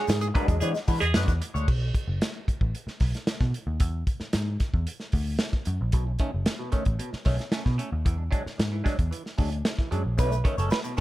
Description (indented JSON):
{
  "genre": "funk",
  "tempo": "113 BPM",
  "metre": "4/4",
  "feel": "straight",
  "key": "unclear",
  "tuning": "A4 = 440 Hz",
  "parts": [
    { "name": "electric guitar at the edge of break-up", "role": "accompaniment", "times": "0.0-1.7, 10.2-11.0 s", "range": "G#3 to C#5", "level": "-32 LUFS", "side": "left 2 dB", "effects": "wah, wide subtle chorus" },
    { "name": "clav", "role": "stabs", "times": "0.0-0.6, 5.9-11.0 s", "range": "B2 to B4", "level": "-33 LUFS", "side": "right 2 dB", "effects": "phaser" },
    { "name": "vintage muted picked electric bass", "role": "bass", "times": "0.1-10.7 s", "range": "F#1 to E3", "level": "-27 LUFS", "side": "equal", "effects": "none" },
    { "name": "warm soul drum kit", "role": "drums", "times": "0.1-11.0 s", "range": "crash cymbal, hi-hat, kick drum, snare drum", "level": "-26 LUFS", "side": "equal", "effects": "none" },
    { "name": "tube shaker", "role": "percussion", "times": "0.1-1.7, 10.2-11.0 s", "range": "none", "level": "-44 LUFS", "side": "left 5 dB", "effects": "none" },
    { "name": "clear tenor saxophone", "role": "second line", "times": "0.6-1.2, 10.2-11.0 s", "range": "G#4 to B4", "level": "-30 LUFS", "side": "right 4 dB", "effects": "none" }
  ],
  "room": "little or no reverb",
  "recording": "none",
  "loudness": "-24 LUFS",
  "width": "side -16 dB against mid",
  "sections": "0.0-1.7 A section; 1.7-10.2 B section",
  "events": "band accent 0.0-1.7; clav solo 0.0-1.7",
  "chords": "0.0 E9; 1.7 N.C.; 3.8 E9; 5.9 B9; 8.1 E9; 10.2 B9"
}